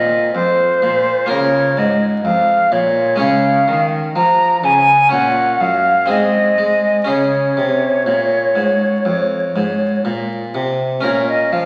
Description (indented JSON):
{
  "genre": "classical, baroque-style sonata movement with continuo",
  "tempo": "62 BPM",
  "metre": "4/4",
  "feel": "straight",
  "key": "Bb minor, Db major from 3.2 s",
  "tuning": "A4 = 438 Hz",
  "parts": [
    { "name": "silver concert flute", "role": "melody", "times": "0.0-11.7 s", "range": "C5 to Bb5", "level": "-16 LUFS", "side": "equal", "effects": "none" },
    { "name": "harpsichord", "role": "accompaniment", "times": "0.0-11.7 s", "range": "F2 to Db5", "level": "-21 LUFS", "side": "equal", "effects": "none" },
    { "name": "warm cello", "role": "bass", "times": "0.0-11.7 s", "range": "F2 to Ab3", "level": "-28 LUFS", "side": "equal", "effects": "none" }
  ],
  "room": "wet recital hall reverb, RT60 1.4 s",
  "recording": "very old 78 rpm record, vinyl crackle",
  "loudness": "-15 LUFS",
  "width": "mono",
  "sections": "0.0-11.0 A section",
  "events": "none",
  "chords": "0.0 F7; 1.3 Bbm; 3.2 Db; 5.1 Gb/Bb; 6.1 Ab; 7.1 Db; 11.0 Bbm"
}